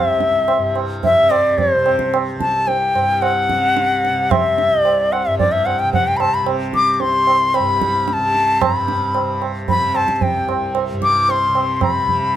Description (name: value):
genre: indian classical, Hindustani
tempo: 111 BPM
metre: 4/4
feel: straight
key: C raga yaman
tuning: A4 = 442 Hz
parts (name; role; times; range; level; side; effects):
- bright reedy bansuri; melody; 0.0-12.4 s; C5 to D6; -16 LUFS; left 2 dB; none
- tanpura; drone; 0.0-12.4 s; C2 to C3; -24 LUFS; equal; none
- tabla; percussion; 0.2-12.3 s; none; -22 LUFS; right 7 dB; none
room: light reverb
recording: close, detailed microphones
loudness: -14 LUFS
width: side -11 dB against mid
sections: 0.0-8.6 A section; 8.6-12.4 B section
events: speeding up 0.0-12.4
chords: none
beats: 0.48 1.03 1.57 | 2.12 2.67 3.21 3.76 | 4.30 4.84 5.38 5.93 | 6.47 7.01 7.54 8.08 | 8.62 9.15 9.69 10.22 | 10.76 11.29 11.82 12.35